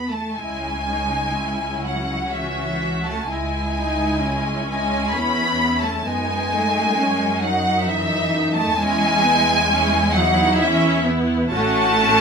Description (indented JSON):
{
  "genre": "classical, slow romantic movement for string orchestra",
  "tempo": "54-68 BPM",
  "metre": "3/4",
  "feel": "rubato",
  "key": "C# minor",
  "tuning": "A4 = 440 Hz",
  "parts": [
    { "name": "rich studio violin section", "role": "melody", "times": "0.0-12.2 s", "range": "E5 to B5", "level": "-24 LUFS", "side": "left 2 dB", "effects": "none" },
    { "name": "rich studio violin section", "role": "second line", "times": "0.0-12.2 s", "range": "E5 to B5", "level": "-23 LUFS", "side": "equal", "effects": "none" },
    { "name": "rich studio cello section", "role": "bass", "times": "0.0-12.2 s", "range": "E3 to B3", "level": "-25 LUFS", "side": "equal", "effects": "none" },
    { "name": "rich studio double bass section", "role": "bass", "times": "0.0-12.2 s", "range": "A1 to F#2", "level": "-27 LUFS", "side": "right 2 dB", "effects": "none" },
    { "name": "rich studio viola section", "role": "accompaniment", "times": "0.4-12.2 s", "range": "A3 to F#4", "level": "-24 LUFS", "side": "right 1 dB", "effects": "none" }
  ],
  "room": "moderate studio reverb, RT60 0.6 s",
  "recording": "minimal, uncompressed stereo recording",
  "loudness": "-18 LUFS",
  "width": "side -6 dB against mid",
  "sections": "0.4-12.2 A section",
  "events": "none",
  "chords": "0.4 C#m; 3.3 Amaj7/C# (rootless); 6.1 F#m7; 8.8 C#m/E; 11.5 A",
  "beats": "| 0.38 1.36 2.34 | 3.30 4.23 5.15 | 6.07 7.00 7.88 | 8.78 9.69 10.60 | 11.53"
}